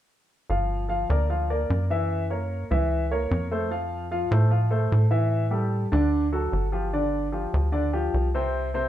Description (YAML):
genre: Afro-Cuban jazz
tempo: 149 BPM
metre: 4/4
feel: straight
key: G dorian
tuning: A4 = 440 Hz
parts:
  - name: clear grand piano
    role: accompaniment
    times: 0.5-8.9 s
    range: C3 to F5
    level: -26 LUFS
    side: equal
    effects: none
  - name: tight sequencer bass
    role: bass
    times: 0.5-8.9 s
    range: G1 to A2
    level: -25 LUFS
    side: equal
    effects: none
room: wet studio reverb, RT60 0.8 s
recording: heard from further back in the room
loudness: -22 LUFS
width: side -12 dB against mid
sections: 0.5-6.9 A section; 6.9-8.9 B section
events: none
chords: 0.5 Gm7; 2.1 F#7; 3.7 Fmaj7; 5.3 A5; 6.1 D; 6.9 G5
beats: | 0.50 0.90 1.30 1.70 | 2.10 2.51 2.91 3.31 | 3.71 4.12 4.52 4.92 | 5.32 5.72 6.12 6.53 | 6.93 7.33 7.73 8.14 | 8.54